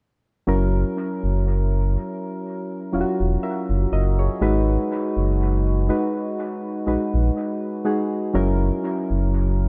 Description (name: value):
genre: contemporary R&B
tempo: 61 BPM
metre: 4/4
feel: swing 54% on 16ths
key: unclear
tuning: A4 = 441 Hz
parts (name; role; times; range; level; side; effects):
- soft electric-piano-like synth keys; accompaniment; 0.5-9.7 s; F#3 to E5; -26 LUFS; equal; chorus, dub echo
- sub bass with octave; bass; 0.5-9.7 s; E1 to A#1; -23 LUFS; equal; none
room: light reverb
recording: echo-heavy mix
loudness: -22 LUFS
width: mono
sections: 0.5-9.7 A section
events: none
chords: 0.5 F#7; 4.4 G#m7; 8.3 F#7